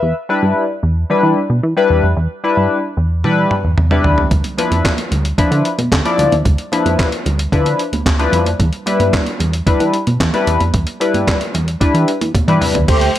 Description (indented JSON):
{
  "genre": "early-eighties boogie funk",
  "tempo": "112 BPM",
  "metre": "4/4",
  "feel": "straight",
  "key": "unclear",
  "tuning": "A4 = 439 Hz",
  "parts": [
    { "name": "chorused polysynth", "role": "accompaniment", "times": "0.0-12.8 s", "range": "F3 to E5", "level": "-16 LUFS", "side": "left 3 dB", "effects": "none" },
    { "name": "plucky analog bass", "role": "bass", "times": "0.0-13.1 s", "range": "D2 to E3", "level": "-16 LUFS", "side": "equal", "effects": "none" },
    { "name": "dusty soul sampler-style drum kit", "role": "drums", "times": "3.2-13.2 s", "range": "crash cymbal, handclaps, hi-hat, kick drum, snare drum, toms", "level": "-18 LUFS", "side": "right 1 dB", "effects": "gated reverb" },
    { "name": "congas", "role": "percussion", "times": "4.3-13.1 s", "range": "none", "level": "-25 LUFS", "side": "right 4 dB", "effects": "none" },
    { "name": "mellow synth brass", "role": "second line", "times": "12.9-13.1 s", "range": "A3 to C5", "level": "-14 LUFS", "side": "right 2 dB", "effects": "chorus" }
  ],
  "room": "light reverb",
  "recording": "none",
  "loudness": "-13 LUFS",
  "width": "side -12 dB against mid",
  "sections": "0.0-12.9 A section",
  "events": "drum fill 3.2-4.3, 12.3-12.9",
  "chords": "0.0 Em7; 4.3 Dm69; 8.6 Em7"
}